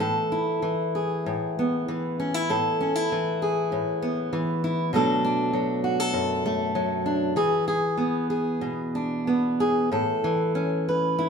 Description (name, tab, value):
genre	folk, solo fingerstyle acoustic guitar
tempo	97 BPM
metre	4/4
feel	rubato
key	A major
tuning	A4 = 439 Hz
part	fingerpicked steel-string acoustic guitar	solo	0.0-11.3 s	F#2 to B4	-23 LUFS	equal	none
room	wet stone room reverb, RT60 1.3 s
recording	band playing live in one room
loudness	-23 LUFS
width	side -6 dB against mid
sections	0.0-9.9 A section; 9.9-11.3 B section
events	none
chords	0.0 Asus2; 4.9 Bm7; 7.4 E7; 9.9 Aadd9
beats	| 0.01 0.64 1.27 1.89 | 2.51 3.12 3.73 4.33 | 4.94 5.54 6.15 6.76 | 7.37 7.99 8.62 9.27 | 9.92 10.55 11.18